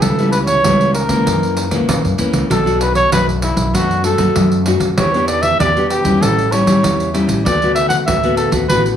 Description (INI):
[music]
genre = samba and choro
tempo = 97 BPM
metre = 4/4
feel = straight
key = D major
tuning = A4 = 440 Hz
[part]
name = breathy trumpet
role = melody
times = 0.0-8.8 s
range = E4 to F#5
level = -16 LUFS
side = right 1 dB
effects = none
[part]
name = nylon-string guitar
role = accompaniment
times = 0.0-9.0 s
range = F#2 to G4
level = -18 LUFS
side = left 3 dB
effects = none
[part]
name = upright bass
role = bass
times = 0.0-9.0 s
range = A1 to A#2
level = -19 LUFS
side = equal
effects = none
[part]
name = pandeiro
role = percussion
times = 0.0-9.0 s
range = none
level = -19 LUFS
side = right 2 dB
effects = none
[sound]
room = moderate small room reverb, RT60 0.5 s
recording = studio ambience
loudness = -12 LUFS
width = side -9 dB against mid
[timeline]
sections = 0.0-9.0 A section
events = none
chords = 0.0 C#m7b5; 1.3 F#7; 2.5 Bm7; 5.0 Em7; 6.2 A7; 7.5 D6